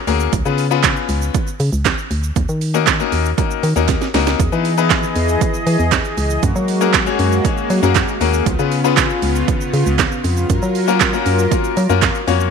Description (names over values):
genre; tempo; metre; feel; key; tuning
dance-pop; 118 BPM; 4/4; straight; F# major; A4 = 444 Hz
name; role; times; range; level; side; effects
clear concert grand piano; accompaniment; 0.1-12.5 s; A#3 to C#5; -19 LUFS; left 14 dB; sidechain pumping
organ-like FM bass; bass; 0.1-12.5 s; C#2 to F#3; -18 LUFS; equal; sidechain pumping
house drum kit; drums; 0.1-12.5 s; handclaps, hi-hat, kick drum, shaker, snare drum; -18 LUFS; right 5 dB; overdrive
group handclap; percussion; 0.8-12.1 s; none; barely audible; none; none
soft supersaw; sustained chords; 4.4-12.5 s; C#3 to D#5; -21 LUFS; equal; sidechain pumping
room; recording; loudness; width
light reverb; 1960s-style stereo; -14 LUFS; side -6 dB against mid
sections
0.0-12.5 A section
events
drum fill 3.9-4.4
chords
0.3 C#7; 2.4 D#m7; 4.4 Emaj7; 6.4 F#add9; 8.5 C#7; 10.5 F#maj7